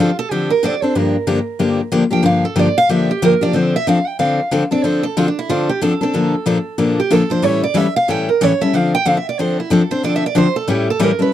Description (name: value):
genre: jazz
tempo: 185 BPM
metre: 4/4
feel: swing 59% on 8ths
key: D minor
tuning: A4 = 440 Hz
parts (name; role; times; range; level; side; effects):
- picked steel-string acoustic guitar; melody; 0.0-11.3 s; D4 to G5; -18 LUFS; right 4 dB; none
- picked steel-string acoustic guitar; accompaniment; 0.0-11.3 s; G2 to A4; -15 LUFS; left 3 dB; none
room: light reverb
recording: dry, close 1970s-style studio recording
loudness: -14 LUFS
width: side -11 dB against mid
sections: 0.0-11.3 A section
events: steel-string acoustic guitar solo 0.0-11.3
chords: 0.0 Dm7; 1.0 Gm7; 3.5 Dm7; 6.1 Bbmaj7; 7.4 A7; 8.7 Dm7; 10.7 A7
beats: 0.31 0.63 | 0.95 1.28 1.60 1.93 | 2.25 2.57 2.90 3.22 | 3.55 3.87 4.19 4.52 | 4.84 5.17 5.49 5.82 | 6.14 6.46 6.79 7.11 | 7.43 7.76 8.08 8.41 | 8.73 9.06 9.38 9.70 | 10.03 10.35 10.68 11.00 | 11.32